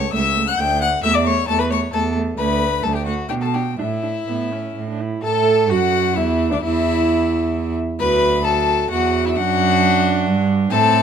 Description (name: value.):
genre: quick classical-period movement for string quartet.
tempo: 132 BPM.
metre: 3/4.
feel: rubato.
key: D major.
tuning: A4 = 439 Hz.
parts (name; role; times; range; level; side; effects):
warm violin; melody; 0.0-11.0 s; D5 to G6; -22 LUFS; left 10 dB; none.
rich violin; second line; 0.0-11.0 s; D4 to G5; -23 LUFS; left 3 dB; none.
rich cello; bass; 0.0-11.0 s; C#2 to B2; -21 LUFS; right 4 dB; none.
warm viola; accompaniment; 0.1-11.0 s; F#3 to A4; -22 LUFS; right 5 dB; none.
room: moderate stone room reverb, RT60 1.3 s.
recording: dark, warm production.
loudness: -16 LUFS.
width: side -8 dB against mid.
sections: 0.0-5.2 A section; 5.2-11.0 B section.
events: none.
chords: 0.0 A/C#; 0.6 D; 1.0 A5/E; 2.4 D5; 3.3 G/B; 3.8 Asus4; 4.8 A; 5.2 D; 6.6 N.C.; 8.0 D; 9.4 D/F#.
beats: 0.14 0.59 | 1.03 1.48 1.93 | 2.38 2.84 3.30 | 3.78 4.27 4.76 | 5.24 5.71 6.17 | 6.62 7.08 7.53 | 7.99 8.45 8.91 | 9.36 9.81 10.27 | 10.72.